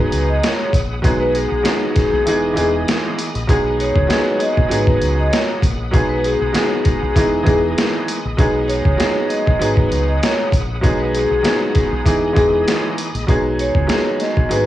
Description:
hip hop, boom-bap hip-hop; 98 BPM; 4/4; swing 55% on 16ths; B major; A4 = 441 Hz
vibraphone with medium mallets; melody; 0.0-14.7 s; G#4 to D#5; -21 LUFS; left 1 dB; high-pass filter, low-pass filter, cassette tape, analog delay
bright upright piano; accompaniment; 0.0-14.7 s; E3 to G#4; -19 LUFS; right 1 dB; cassette tape, high-pass filter, low-pass filter
bright tonewheel organ; sustained chords; 0.0-13.3 s; G#4 to D#6; -30 LUFS; left 1 dB; overdrive, chorus vibrato, fast rotary speaker, high-pass filter, low-pass filter
deep dub fingered electric bass; bass; 0.0-14.7 s; E1 to C#2; -22 LUFS; equal
boom bap sampler-style drum kit; drums; 0.1-14.7 s; hi-hat, kick drum, snare drum; -18 LUFS; equal
digital ambience; home recording on cassette, small room ambience; -14 LUFS; side -14 dB against mid
0.0-13.3 A section; 13.3-14.7 B section
kick muted 2.3-3.5
0.0 G#m7; 1.0 B6; 2.3 Emaj7; 3.5 B6; 4.7 G#m7; 5.9 B6; 7.2 Emaj7; 8.4 B6; 9.6 G#m7; 10.8 B6; 12.1 Emaj7; 13.3 B6

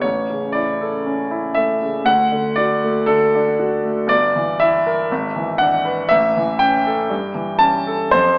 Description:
classical, romantic character piece for solo piano; 59 BPM; 2/4; rubato; D major; A4 = 443 Hz
warm concert grand piano; solo; 0.0-8.4 s; G1 to A5; -18 LUFS; equal
moderate recital hall reverb, RT60 1.4 s; AM radio sound; -18 LUFS; mono
0.0-8.4 A section
0.0 A; 2.1 D; 4.1 Em7b5/G; 5.1 E7/G#; 6.1 A; 7.1 A7/G

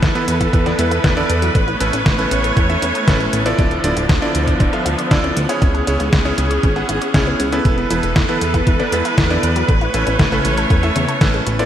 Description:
italo disco; 118 BPM; 4/4; straight; A major; A4 = 441 Hz
clear studio string section; sustained chords; 0.0-11.7 s; D3 to C#5; -20 LUFS; right 1 dB
analog pluck; arpeggios; 0.0-11.7 s; E2 to D5; -26 LUFS; left 3 dB; chorus, digital delay
chorused synth bass; bass; 0.0-11.7 s; D1 to E2; -21 LUFS; equal
detuned 8-bit digital drum machine; drums; 0.0-11.7 s; hi-hat, snare drum, toms; -21 LUFS; equal; overdrive
electronic kick drum; drums; 0.0-11.3 s; -17 LUFS; equal; overdrive
bright electric grand piano; stabs; 0.2-11.7 s; B3 to F#5; -21 LUFS; right 2 dB; digital delay
moderate lush hall reverb, RT60 1.6 s, digital ambience; bright 1980s-style digital production, vinyl crackle; -14 LUFS; side -10 dB against mid
0.0-11.7 A section
0.0 Esus4; 1.6 Aadd9; 3.6 Dmadd9; 5.6 C#m; 7.7 Esus4; 9.7 Aadd9

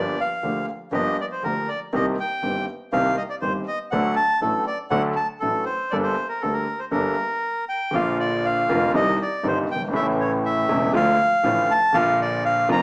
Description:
tango; 120 BPM; 4/4; rubato; G minor, Bb major from 7.9 s; A4 = 439 Hz
bandoneon; melody; 0.0-12.8 s; A4 to Bb5; -25 LUFS; equal; plate reverb
clear concert grand piano; accompaniment; 0.0-12.8 s; E1 to A4; -27 LUFS; equal
clear double bass; bass; 0.0-12.8 s; E1 to D2; -33 LUFS; equal
wet large studio reverb, RT60 0.8 s; small speaker sound; -23 LUFS; mono
0.0-7.9 A section; 7.9-12.8 B section
stop 7.4-7.9
0.0 Gm7; 1.9 Cm7; 3.9 D; 5.9 Gmadd9; 7.9 Bb; 9.0 Cm; 10.0 A; 11.0 Dm; 12.0 Bb

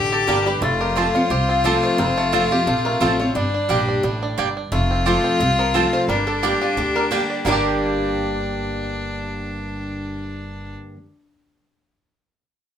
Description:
bluegrass; 176 BPM; 4/4; swing 54% on 8ths; G minor; A4 = 441 Hz
bluegrass banjo; melody; 0.0-10.8 s; D3 to G4; -27 LUFS; right 5 dB
clear fiddle; second line; 0.0-10.8 s; D4 to G4; -23 LUFS; left 3 dB
picked steel-string acoustic guitar; accompaniment; 0.0-11.0 s; F2 to G4; -23 LUFS; left 1 dB
upright bass; bass; 0.0-10.7 s; F1 to D2; -27 LUFS; right 1 dB
lap resonator guitar; melody; 0.1-10.7 s; F4 to D5; -25 LUFS; left 1 dB
mandolin; stabs; 0.3-11.0 s; Bb3 to A5; -25 LUFS; right 7 dB
wet studio ambience, RT60 0.5 s; band playing live in one room; -18 LUFS; side -9 dB against mid
0.0-4.7 A section; 4.7-7.5 B section; 7.5-10.2 C section
0.0 Gm; 0.6 F; 3.4 Gm; 4.7 F; 6.1 Gm

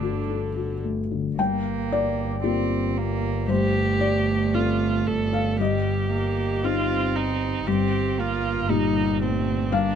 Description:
neoclassical piano and strings; 57 BPM; 4/4; rubato; G minor; A4 = 439 Hz
dark cello; second line; 0.0-10.0 s; G3 to D4; -28 LUFS; right 8 dB
felt-muted upright piano; accompaniment; 0.0-10.0 s; G2 to G5; -26 LUFS; left 6 dB
warm viola; accompaniment; 0.0-10.0 s; D3 to A4; -27 LUFS; right 3 dB
warm double bass; bass; 0.0-10.0 s; G1; -28 LUFS; equal
little or no reverb; close, detailed microphones; -21 LUFS; side -8 dB against mid
0.0-1.4 A section; 1.4-10.0 B section
0.0 D/G; 1.4 Gm7; 3.5 F/G; 5.6 Cm/G; 7.7 Eb/G

